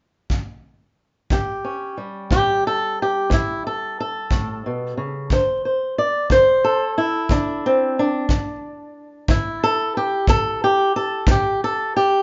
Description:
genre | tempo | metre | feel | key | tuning
acoustic country blues, solo or duo | 60 BPM (dotted quarters) | 12/8 | straight | A mixolydian | A4 = 440 Hz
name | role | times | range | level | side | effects
kick drum | drums | 0.3-11.4 s | none | -22 LUFS | equal | none
fingerpicked swing-style acoustic guitar | melody | 1.3-12.2 s | A2 to D5 | -21 LUFS | equal | none
room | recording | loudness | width
moderate studio reverb, RT60 0.7 s | band playing live in one room, nothing above 7.6 kHz | -20 LUFS | mono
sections
0.0-1.3 A section; 1.3-9.3 B section; 9.3-12.2 C section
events
steel-string acoustic guitar solo 9.3-12.2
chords
0.0 N.C.; 1.3 A7; 5.3 D5; 9.3 A5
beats
0.30 | 1.30 2.30 3.30 4.30 | 5.30 6.30 7.30 8.29 | 9.29 10.28 11.27

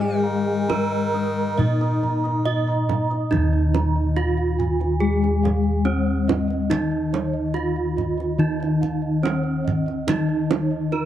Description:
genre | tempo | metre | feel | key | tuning
Javanese gamelan | 71 BPM | 4/4 | straight | Eb slendro | A4 = 440 Hz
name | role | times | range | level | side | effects
gamelan-type bronze metallophone | melody | 0.0-11.1 s | Db4-45c to Eb5 | -26 LUFS | right 4 dB | analog delay
edgy tenor saxophone | second line | 0.0-2.8 s | Eb3 | -32 LUFS | left 3 dB | analog delay
gamelan-type bronze metallophone | accompaniment | 0.0-11.1 s | Eb3 to Eb4 | -25 LUFS | left 6 dB | none
gamelan-type bossed gongs | arpeggios | 0.0-3.1 s | Eb5 to Bb5+25c | -34 LUFS | left 2 dB | none
gamelan-type bronze metallophone | arpeggios | 0.0-11.1 s | Db5-45c to Eb6 | -32 LUFS | right 4 dB | none
gamelan-type bossed gongs | bass | 0.0-11.1 s | Eb2 to Ab4-35c | -24 LUFS | equal | none
kendang | percussion | 0.0-11.0 s | none | -27 LUFS | right 6 dB | none
room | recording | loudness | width
light reverb, studio reverb | dark, warm production | -19 LUFS | side -11 dB against mid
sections
0.0-3.3 A section; 3.3-11.1 B section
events
none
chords
none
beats
0.69 1.59 2.46 | 3.32 4.16 5.01 5.85 | 6.70 7.54 8.39 9.23 | 10.08 10.92

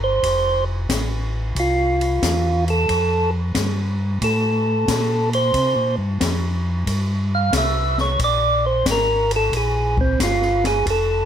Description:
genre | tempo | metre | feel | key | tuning
soul jazz organ trio | 90 BPM | 4/4 | swing 68% on 8ths | F major | A4 = 440 Hz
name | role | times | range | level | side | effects
percussive tonewheel organ | melody | 0.0-11.3 s | C4 to F5 | -19 LUFS | right 1 dB | slow rotary speaker
mellow tonewheel organ | bass | 0.0-11.3 s | F1 to C3 | -22 LUFS | equal | chorus vibrato, slow rotary speaker
open jazz drum kit | drums | 0.2-11.1 s | hi-hat, kick drum, ride cymbal, snare drum | -25 LUFS | left 2 dB | none
room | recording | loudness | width
light reverb | none | -17 LUFS | side -9 dB against mid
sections
0.0-11.3 A section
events
tonewheel organ solo 0.0-11.3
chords
0.2 Fadd9; 5.5 C5; 8.2 Gm11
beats
| 0.22 0.89 1.55 2.21 | 2.88 3.54 4.21 4.87 | 5.53 6.20 6.86 7.53 | 8.19 8.86 9.52 10.19 | 10.85

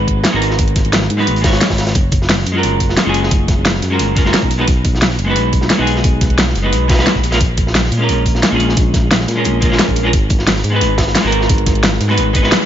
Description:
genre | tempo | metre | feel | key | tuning
liquid drum and bass | 176 BPM | 4/4 | straight | unclear | A4 = 440 Hz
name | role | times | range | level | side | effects
vintage hollow-body jazz guitar | accompaniment | 0.0-12.7 s | G#3 to C#5 | -17 LUFS | equal | vintage 12-bit sampler grit, tape echo
smooth synth bass | bass | 0.0-12.5 s | F#1 to A#2 | -17 LUFS | equal | none
electronic kick drum | drums | 0.1-12.4 s | none | -16 LUFS | equal | overdrive
pop drum kit | drums | 0.1-12.6 s | hi-hat, snare drum | -18 LUFS | equal | overdrive
crunchy breakbeat drum kit | drums | 0.2-12.7 s | hi-hat, snare drum | -22 LUFS | equal | high-pass filter on hats, high-pass filter on snare, high-pass filter on room
room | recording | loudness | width
digital ambience | nothing above 7.5 kHz | -11 LUFS | side -10 dB against mid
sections
0.0-12.7 A section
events
none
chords
0.0 G#m7; 2.0 F#maj9; 4.5 B6; 7.2 A#m7; 10.1 G#m7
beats
0.25 | 0.59 0.93 1.27 1.61 | 1.95 2.29 2.63 2.97 | 3.31 3.66 4.00 4.34 | 4.68 5.02 5.36 5.70 | 6.04 6.38 6.72 7.07 | 7.41 7.75 8.09 8.43 | 8.77 9.11 9.45 9.79 | 10.13 10.47 10.81 11.16 | 11.50 11.84 12.18 12.52

